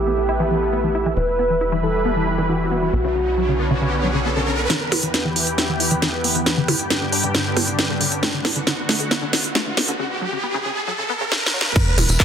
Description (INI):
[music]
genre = uplifting trance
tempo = 136 BPM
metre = 4/4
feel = straight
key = E dorian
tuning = A4 = 439 Hz
[part]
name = warm velvety synth lead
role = second line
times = 0.0-4.6 s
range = F#4 to B4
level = -22 LUFS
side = right 1 dB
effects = chorus, cassette tape, ping-pong delay
[part]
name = analog string pad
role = sustained chords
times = 0.0-12.2 s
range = D2 to B4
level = -24 LUFS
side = equal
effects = ensemble chorus, sidechain pumping
[part]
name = tight sequencer bass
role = bass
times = 0.0-4.7, 12.0-12.2 s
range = E1 to B1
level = -24 LUFS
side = equal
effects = sidechain pumping
[part]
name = tight sequenced synth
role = arpeggios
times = 0.1-11.7 s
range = C#3 to E4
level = -26 LUFS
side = left 2 dB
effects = chorus, phaser, sidechain pumping, dub echo
[part]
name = riser and sub drop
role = sound effects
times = 2.6-12.2 s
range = none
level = -27 LUFS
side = right 1 dB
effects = none
[part]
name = techno drum kit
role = drums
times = 4.7-12.2 s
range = crash cymbal, handclaps, hi-hat, percussion blips, snare drum, tambourine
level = -20 LUFS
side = right 1 dB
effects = soft clipping on snare, sidechain pumping on hats, sidechain pumping on perc, sidechain pumping on cymbals
[part]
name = electronic kick drum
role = drums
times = 11.8-12.2 s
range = none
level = -18 LUFS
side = equal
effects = overdrive
[sound]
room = moderate digital room reverb, RT60 1.2 s, digital ambience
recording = dense, heavily limited modern master, high-pass filter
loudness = -18 LUFS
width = side -8 dB against mid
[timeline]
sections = 0.0-4.7 A section; 4.7-11.8 B section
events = filter sweep on analog synth pad 0.0-4.7; riser 2.6-4.7, 4.7-11.8; build-up 4.7-11.8; drum fill 4.7-10.0, 11.3-11.8; filter sweep on synth arpeggio sound 4.7-11.8; impact 11.8-12.2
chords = 0.0 Asus2; 1.2 Em; 2.9 Bmadd9; 4.7 Em; 6.5 G; 8.2 D6; 10.0 Bsus2 (rootless)